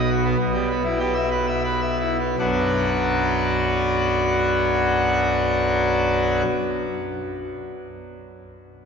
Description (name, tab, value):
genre	classical, organ toccata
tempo	77-108 BPM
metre	3/4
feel	straight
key	B minor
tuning	A4 = 441 Hz
part	pipe organ, full organ	solo	0.0-6.4 s	B1 to E5	-20 LUFS	equal	none
room	wet cathedral reverb, RT60 5.5 s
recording	heard from further back in the room, nothing above 7.6 kHz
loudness	-19 LUFS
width	side -6 dB against mid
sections	0.0-2.4 A section; 2.4-7.0 B section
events	slowing down 0.0-2.4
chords	0.4 Em/B; 2.4 Bm